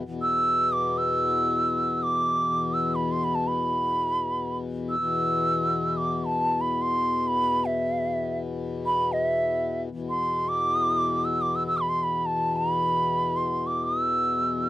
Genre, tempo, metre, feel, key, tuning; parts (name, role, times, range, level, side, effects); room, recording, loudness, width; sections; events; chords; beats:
indian classical, Hindustani; free time; A4 = 440 Hz
hand-pumped harmonium; drone; 0.0-14.7 s; E2 to B2; -29 LUFS; left 4 dB
bright bansuri; melody; 0.2-14.7 s; E5 to E6; -24 LUFS; right 1 dB
little or no reverb; dry, close 1970s-style studio recording; -23 LUFS; side -14 dB against mid
0.0-9.9 A section; 9.9-14.7 A section
free time